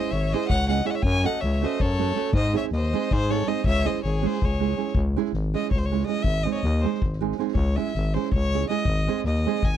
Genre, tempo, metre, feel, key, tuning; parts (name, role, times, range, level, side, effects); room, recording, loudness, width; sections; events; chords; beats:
balkan folk, Balkan wedding band; 322 BPM (eighths); 7/8; straight; C# harmonic minor; A4 = 439 Hz
bright violin; melody; 0.0-9.8 s; B#4 to G#5; -29 LUFS; left 1 dB
clear violin; second line; 0.0-5.0 s; G#4 to D#5; -32 LUFS; left 6 dB
nylon-string guitar; accompaniment; 0.0-9.6 s; G#3 to A4; -26 LUFS; right 15 dB
soft-mallet drum kit; percussion; 0.0-9.8 s; kick drum, snare drum; -28 LUFS; left 1 dB
growling FM bass; bass; 0.1-9.8 s; G#1 to G#2; -24 LUFS; left 1 dB
little or no reverb; dry, close 1970s-style studio recording; -22 LUFS; side -10 dB against mid
0.0-4.9 A section; 4.9-9.8 B section
violin solo 4.9-9.8
0.0 C#m; 1.0 F#m; 2.3 G#; 3.6 C#m; 6.2 G#; 7.5 C#m; 8.9 G#
0.11 0.29 0.48 0.66 0.85 | 1.03 1.22 1.41 1.59 1.78 1.97 2.15 | 2.34 2.52 2.71 2.89 3.08 3.27 3.45 | 3.64 3.82 4.01 4.20 4.38 4.57 4.75 | 4.94 5.13 5.31 5.50 5.68 5.87 6.06 | 6.24 6.43 6.62 6.80 6.99 7.17 7.36 | 7.55 7.73 7.92 8.11 8.29 8.48 8.67 | 8.85 9.04 9.22 9.41 9.60